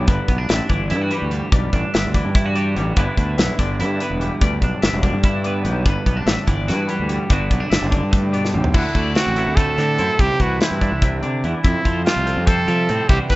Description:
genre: math rock and midwest emo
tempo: 290 BPM (eighths)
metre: 7/8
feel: straight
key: G major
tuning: A4 = 440 Hz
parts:
  - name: twelve-string electric guitar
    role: accompaniment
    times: 0.0-13.4 s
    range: F2 to F#4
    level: -24 LUFS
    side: right 2 dB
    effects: lush chorus
  - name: twangy electric guitar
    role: arpeggios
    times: 0.0-13.4 s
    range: G4 to F#5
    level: -28 LUFS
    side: left 5 dB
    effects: harmonic tremolo, tape echo
  - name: fuzz fingered electric bass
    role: bass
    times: 0.0-13.4 s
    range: E1 to F3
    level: -22 LUFS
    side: equal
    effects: overdrive
  - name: modern studio drum kit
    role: drums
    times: 0.1-13.4 s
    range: crash cymbal, hi-hat, kick drum, snare drum, toms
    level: -19 LUFS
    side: equal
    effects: none
  - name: bright trumpet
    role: melody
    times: 8.7-13.4 s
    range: E4 to B4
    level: -21 LUFS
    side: right 2 dB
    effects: none
room: studio reverb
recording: rough home demo mix, nothing above 7.9 kHz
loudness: -16 LUFS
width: side -19 dB against mid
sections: 0.0-8.7 A section; 8.7-13.4 B section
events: drum fill 8.4-8.7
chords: 0.1 Em9/G; 3.0 G6; 5.9 Em9/G; 7.3 Gmaj7; 8.7 D9; 10.2 Cmaj9; 11.6 Fmaj9

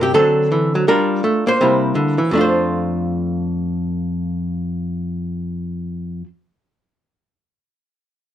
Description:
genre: solo jazz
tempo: 165 BPM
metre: 4/4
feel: swing 63% on 8ths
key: F major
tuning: A4 = 440 Hz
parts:
  - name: archtop guitar, miked and amplified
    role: solo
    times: 0.0-6.3 s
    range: F2 to C5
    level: -16 LUFS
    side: equal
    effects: none
room: light reverb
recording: dark, warm production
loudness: -16 LUFS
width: side -11 dB against mid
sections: 0.0-2.3 A section; 2.3-5.2 B section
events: none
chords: 0.1 D7; 0.9 Gm7; 1.6 C7; 2.3 F6

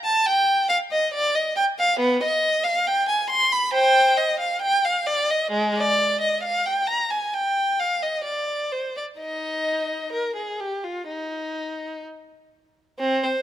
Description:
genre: classical, baroque-style suite movement for unaccompanied violin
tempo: 62-70 BPM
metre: 4/4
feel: rubato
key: Eb major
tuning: A4 = 442 Hz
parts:
  - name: rich violin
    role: solo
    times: 0.0-13.4 s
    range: Ab3 to C6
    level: -20 LUFS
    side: equal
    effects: none
room: light reverb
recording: close, detailed microphones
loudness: -20 LUFS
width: side -11 dB against mid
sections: 0.0-13.0 A section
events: none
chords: none

